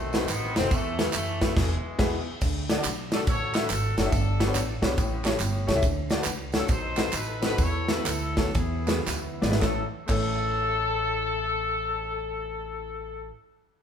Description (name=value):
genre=uptempo gospel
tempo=106-141 BPM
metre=4/4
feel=swing 65% on 8ths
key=A major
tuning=A4 = 441 Hz
part: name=clear horn section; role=melody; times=0.0-13.3 s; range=B2 to C#5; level=-30 LUFS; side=left 2 dB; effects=none
part: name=dark upright piano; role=accompaniment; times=0.0-13.3 s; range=A1 to E5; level=-31 LUFS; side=left 2 dB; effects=none
part: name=upright bass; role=bass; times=0.0-13.3 s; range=E1 to F#2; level=-31 LUFS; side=right 1 dB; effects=none
part: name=modern studio drum kit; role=drums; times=0.1-10.2 s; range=crash cymbal, kick drum, ride cymbal, snare drum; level=-27 LUFS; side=equal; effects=none
part: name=tambourine and handclaps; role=percussion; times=0.1-10.2 s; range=none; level=-36 LUFS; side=right 5 dB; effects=none
room=moderate large studio reverb, RT60 1.2 s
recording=band playing live in one room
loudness=-24 LUFS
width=side -8 dB against mid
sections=0.0-2.4 A section; 2.4-9.6 B section; 9.6-13.8 C section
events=band accent 1.6-2.4; slowing down 5.8-9.6; drum fill 9.1-9.6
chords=0.0 B7b9; 0.7 Esus4; 1.6 E; 2.4 D; 4.1 G; 5.0 A7; 5.8 D; 6.7 B7b9; 7.6 Esus4; 8.6 E; 9.6 A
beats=0.28 | 0.71 1.14 1.56 1.99 | 2.41 2.84 3.27 3.69 | 4.12 4.54 4.97 5.40 | 5.83 6.25 6.69 7.13 | 7.59 8.06 8.55 9.07 | 9.62 10.19 10.76 11.32 | 11.89 12.46 13.03